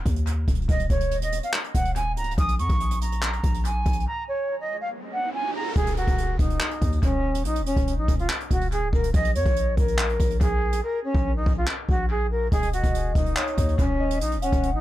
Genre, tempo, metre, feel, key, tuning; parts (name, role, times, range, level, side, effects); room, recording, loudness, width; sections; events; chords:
hip hop, trap; 142 BPM; 4/4; half-time; A4 = 439 Hz
warm 808-style bass; bass; 0.0-14.8 s; Db1 to F2; -26 LUFS; equal
jazz brush drum kit; drums; 0.1-14.7 s; handclaps, hi-hat, kick drum; -25 LUFS; equal
silver concert flute; melody; 0.7-14.8 s; Db4 to Eb6; -27 LUFS; right 1 dB; low-pass filter, analog delay
riser; sound effects; 4.7-5.8 s; -35 LUFS; right 2 dB
warm velvety synth lead; second line; 12.5-14.8 s; Db5 to Gb5; -31 LUFS; left 1 dB; chorus, analog delay
little or no reverb; echo-heavy mix; -22 LUFS; side -14 dB against mid
0.0-5.8 A section; 5.8-14.8 B section
break 0.0-0.7, 4.1-5.8, 10.8-12.5; riser 4.7-5.8
0.0 N.C.; 2.4 Bbm; 5.8 Eb7(no3); 9.1 Bbm; 12.5 Ebm7